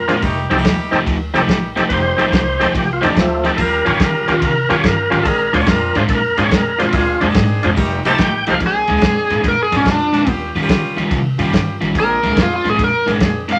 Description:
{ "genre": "electric blues shuffle", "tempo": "143 BPM", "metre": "4/4", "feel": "swing 67% on 8ths", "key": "Bb mixolydian", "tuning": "A4 = 444 Hz", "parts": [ { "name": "overdriven tonewheel organ", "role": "accompaniment", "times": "0.0-8.6 s", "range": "F3 to A5", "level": "-19 LUFS", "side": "equal", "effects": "slow rotary speaker" }, { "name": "clear horn section", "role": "stabs", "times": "0.0-13.4 s", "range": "F3 to Ab4", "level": "-26 LUFS", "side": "equal", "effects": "none" }, { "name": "upright bass", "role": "bass", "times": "0.0-13.5 s", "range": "F1 to Db3", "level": "-26 LUFS", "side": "equal", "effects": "none" }, { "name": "crunchy overdriven guitar", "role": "riff", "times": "0.1-13.6 s", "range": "Bb2 to G4", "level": "-22 LUFS", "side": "equal", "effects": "none" }, { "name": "warm soul drum kit", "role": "drums", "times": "0.1-13.6 s", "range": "kick drum, ride cymbal, snare drum", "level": "-23 LUFS", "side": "equal", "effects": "none" }, { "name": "overdriven slide guitar", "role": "melody", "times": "8.7-13.6 s", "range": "Db4 to F5", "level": "-18 LUFS", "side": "equal", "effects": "none" } ], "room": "moderate club reverb, RT60 0.5 s", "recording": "none", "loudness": "-16 LUFS", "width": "mono", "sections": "0.0-8.6 A section; 8.6-13.6 B section", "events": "tonewheel organ fill 7.8-8.6", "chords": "0.2 F9; 3.6 Eb9; 5.3 Bb9; 7.8 F9; 8.6 Bb9; 10.3 Eb9; 11.9 Bb9" }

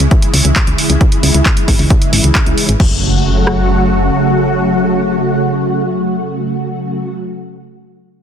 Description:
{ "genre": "uplifting trance", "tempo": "134 BPM", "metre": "4/4", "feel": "straight", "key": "F# minor", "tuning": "A4 = 439 Hz", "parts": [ { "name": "analog string pad", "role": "sustained chords", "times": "0.0-7.1 s", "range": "C#3 to F#4", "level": "-15 LUFS", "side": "equal", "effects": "ensemble chorus, sidechain pumping" }, { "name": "solid FM bass", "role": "bass", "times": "0.0-4.1 s", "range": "F#1 to C#2", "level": "-14 LUFS", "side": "equal", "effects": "sidechain pumping" }, { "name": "punchy analog drum machine", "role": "drums", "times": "0.0-2.9 s", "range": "crash cymbal, handclaps, hi-hat", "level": "-17 LUFS", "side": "equal", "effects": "sidechain pumping on hats, studio reverb, sidechain pumping on cymbals" }, { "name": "punchy analog drum machine", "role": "drums", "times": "0.1-3.6 s", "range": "kick drum, rim click", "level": "-12 LUFS", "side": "equal", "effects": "studio reverb, soft clipping on snare" }, { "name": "impact", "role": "sound effects", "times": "2.9-7.6 s", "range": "none", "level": "-24 LUFS", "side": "equal", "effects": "none" } ], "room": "light reverb, digital ambience", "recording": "dense, heavily limited modern master", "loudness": "-11 LUFS", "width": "side -8 dB against mid", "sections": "0.0-2.8 A section; 2.8-6.4 B section", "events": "none", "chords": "0.0 C#m; 2.8 F#m" }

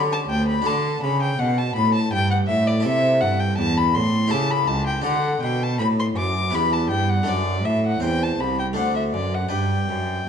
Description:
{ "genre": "classical, baroque-style sonata movement with continuo", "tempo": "81 BPM", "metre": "3/4", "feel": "straight", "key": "unclear", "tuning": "A4 = 440 Hz", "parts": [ { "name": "harpsichord", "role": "accompaniment", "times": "0.0-10.3 s", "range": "C2 to C5", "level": "-25 LUFS", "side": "equal", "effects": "none" }, { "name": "warm cello", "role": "bass", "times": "0.0-10.3 s", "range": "C2 to D3", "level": "-23 LUFS", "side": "right 1 dB", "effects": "none" }, { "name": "warm violin", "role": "melody", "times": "0.1-10.3 s", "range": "D5 to D6", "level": "-23 LUFS", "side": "left 2 dB", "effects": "none" } ], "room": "wet recital hall reverb, RT60 1.5 s", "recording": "dark, warm production", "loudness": "-19 LUFS", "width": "side -7 dB against mid", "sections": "0.0-10.3 A section", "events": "none", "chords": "0.0 A7/D; 0.7 D; 2.8 Am; 4.3 A7/C#; 5.0 D; 6.5 Em; 7.3 D/F#; 8.0 C/E; 8.8 D7; 9.5 G" }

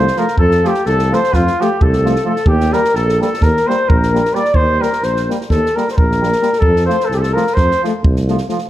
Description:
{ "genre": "balkan folk, Balkan brass band", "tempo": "260 BPM (eighths)", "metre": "9/8", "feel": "straight", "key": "F mixolydian", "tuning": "A4 = 440 Hz", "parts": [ { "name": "warm flugelhorn", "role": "melody", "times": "0.0-7.8 s", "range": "F4 to D5", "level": "-17 LUFS", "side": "equal", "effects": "none" }, { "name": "mellow clarinet", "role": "second line", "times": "0.0-7.8 s", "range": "F4 to D5", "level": "-20 LUFS", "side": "left 4 dB", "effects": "none" }, { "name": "brilliant trombone", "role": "accompaniment", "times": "0.0-8.6 s", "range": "F3 to G3", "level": "-24 LUFS", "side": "right 6 dB", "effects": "none" }, { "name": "warm euphonium", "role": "accompaniment", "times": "0.0-8.6 s", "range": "A3 to Bb3", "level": "-24 LUFS", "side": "left 5 dB", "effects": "none" }, { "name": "warm tuba", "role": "bass", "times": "0.0-8.4 s", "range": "Bb1 to F2", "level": "-18 LUFS", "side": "right 1 dB", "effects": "none" }, { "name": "compact cocktail drum kit", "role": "percussion", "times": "0.1-8.6 s", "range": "kick drum, snare drum", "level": "-18 LUFS", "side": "equal", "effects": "none" } ], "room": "moderate recital hall reverb, RT60 1.4 s", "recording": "none", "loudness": "-12 LUFS", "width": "side -13 dB against mid", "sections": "0.0-8.7 A section", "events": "none", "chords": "0.0 F; 2.5 Eb; 6.6 F" }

